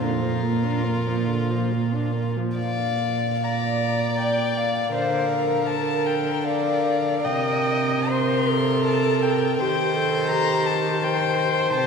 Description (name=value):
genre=classical, slow romantic movement for string quartet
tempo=66-86 BPM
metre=3/4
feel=rubato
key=Bb major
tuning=A4 = 440 Hz
part: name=dark violin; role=melody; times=0.0-11.9 s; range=Bb4 to C6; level=-26 LUFS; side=left 5 dB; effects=none
part: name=warm violin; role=second line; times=0.0-11.9 s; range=F4 to D5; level=-28 LUFS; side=left 1 dB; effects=none
part: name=dark viola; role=accompaniment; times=0.0-11.9 s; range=D3 to Eb5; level=-26 LUFS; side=right 2 dB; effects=none
part: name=warm cello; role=bass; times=0.0-11.9 s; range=Bb2 to Eb3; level=-25 LUFS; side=right 2 dB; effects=none
room=wet cathedral reverb, RT60 4.8 s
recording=recorded in a church or concert hall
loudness=-20 LUFS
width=side -5 dB against mid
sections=0.0-2.6 A section; 2.6-11.9 B section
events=none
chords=0.0 Bb; 5.0 Bb/D; 7.3 Cm7; 9.6 Cm/Eb